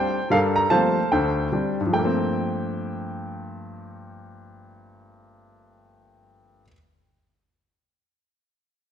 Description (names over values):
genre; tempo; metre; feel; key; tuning
solo jazz; 148 BPM; 4/4; swing 64% on 8ths; G minor; A4 = 440 Hz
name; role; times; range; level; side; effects
warm baby grand piano; solo; 0.0-6.7 s; D2 to Bb5; -21 LUFS; equal; none
room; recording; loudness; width
moderate scoring stage reverb, RT60 1.5 s; recorded in a church or concert hall; -20 LUFS; side -9 dB against mid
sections
0.0-1.9 A section; 1.9-5.2 B section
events
none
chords
0.3 Gm11; 1.1 D7sus4; 1.9 Gm11